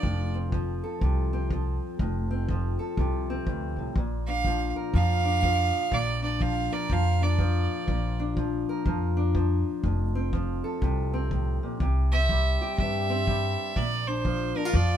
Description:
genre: acoustic country blues, solo or duo.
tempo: 122 BPM.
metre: 4/4.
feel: swing 62% on 8ths.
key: F major.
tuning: A4 = 442 Hz.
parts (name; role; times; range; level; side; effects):
bright fiddle; melody; 0.0-0.3, 4.3-8.2, 12.1-15.0 s; Bb4 to F5; -29 LUFS; right 5 dB; none.
fingerpicked steel-string acoustic guitar; accompaniment; 0.0-15.0 s; F2 to Bb4; -30 LUFS; left 2 dB; none.
upright bass; bass; 0.0-15.0 s; F1 to G2; -27 LUFS; equal; none.
kick drum; drums; 0.0-14.9 s; none; -31 LUFS; equal; none.
room: light reverb.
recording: minimal, uncompressed stereo recording.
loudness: -24 LUFS.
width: side -10 dB against mid.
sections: 0.0-15.0 A section.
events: none.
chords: 0.0 F; 4.0 Bb; 9.8 F; 11.8 C; 13.8 Bb.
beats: | 0.03 0.53 1.02 1.51 | 2.00 2.49 2.98 3.47 | 3.96 4.45 4.94 5.43 | 5.92 6.41 6.90 7.39 | 7.88 8.37 8.86 9.35 | 9.84 10.33 10.82 11.31 | 11.80 12.29 12.78 13.27 | 13.76 14.25 14.74.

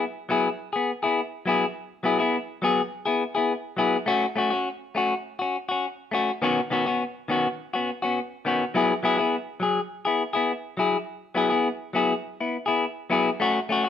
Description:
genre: highlife.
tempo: 103 BPM.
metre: 4/4.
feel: swing 53% on 16ths.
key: E major.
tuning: A4 = 438 Hz.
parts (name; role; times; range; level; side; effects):
clean electric guitar; solo; 0.0-13.9 s; D#3 to G#4; -23 LUFS; left 3 dB; none.
room: moderate studio reverb, RT60 1.0 s.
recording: band playing live in one room.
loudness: -23 LUFS.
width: side -9 dB against mid.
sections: 0.0-13.9 A section.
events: none.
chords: 0.0 Eadd9; 4.1 F#m; 6.4 Badd9; 8.7 Eadd9.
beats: 0.00 0.58 1.16 | 1.75 2.33 2.91 3.49 | 4.07 4.65 5.24 5.82 | 6.40 6.98 7.57 8.15 | 8.73 9.32 9.90 10.48 | 11.07 11.65 12.23 12.82 | 13.40.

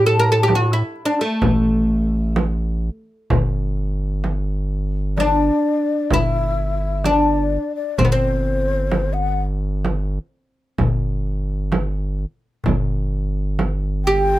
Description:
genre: Turkish makam ensemble.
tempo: 128 BPM (eighths).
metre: 10/8.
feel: straight.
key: A makam hicaz.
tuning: A4 = 442 Hz.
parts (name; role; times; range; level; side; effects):
oud; melody; 0.0-14.4 s; A3 to Bb4; -19 LUFS; equal; none.
round analog bass; bass; 0.0-14.4 s; G1 to A2; -21 LUFS; equal; none.
darbuka; percussion; 0.0-13.8 s; none; -24 LUFS; left 3 dB; none.
frame drum; percussion; 0.5-13.8 s; none; -22 LUFS; right 2 dB; none.
breathy low ney; second line; 5.2-14.4 s; C5 to G5; -23 LUFS; left 5 dB; none.
room: little or no reverb.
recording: minimal, uncompressed stereo recording.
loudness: -18 LUFS.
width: side -15 dB against mid.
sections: 0.0-3.3 A section; 3.3-14.4 B section.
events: none.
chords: none.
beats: 0.03 0.49 0.96 1.43 1.90 2.37 2.83 | 3.30 3.77 4.24 4.70 5.17 5.64 6.11 6.58 7.04 7.51 | 7.98 8.45 8.91 9.38 9.85 10.32 10.79 11.25 11.72 12.19 | 12.66 13.12 13.59 14.06.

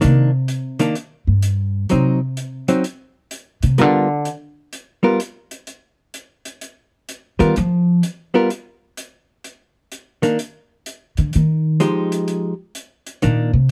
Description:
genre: jazz, small-group swing and bop.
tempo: 127 BPM.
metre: 4/4.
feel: swing 66% on 8ths.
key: C minor.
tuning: A4 = 441 Hz.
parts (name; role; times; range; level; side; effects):
hollow-body jazz guitar; accompaniment; 0.0-13.5 s; Eb3 to A#4; -19 LUFS; equal; none.
upright bass; bass; 0.0-4.3, 7.4-8.0, 11.2-13.7 s; G2 to F3; -18 LUFS; equal; none.
hi-hat; drums; 0.0-13.4 s; none; -36 LUFS; equal; none.
room: little or no reverb.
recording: close, detailed microphones.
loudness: -19 LUFS.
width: mono.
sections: 0.0-9.4 A section; 9.4-13.7 A section.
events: upright bass solo 0.0-13.7.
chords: 0.0 Cm9; 1.9 Cdim; 3.8 G7#9; 5.7 Ebadd9; 7.6 N.C.; 9.4 Bbadd11/D; 11.3 Fm9.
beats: | 0.02 0.49 0.96 1.43 | 1.90 2.37 2.85 3.32 | 3.79 4.26 4.73 5.20 | 5.67 6.14 6.62 7.09 | 7.56 8.03 8.50 8.97 | 9.45 9.92 10.39 10.86 | 11.33 11.81 12.28 12.75 | 13.22.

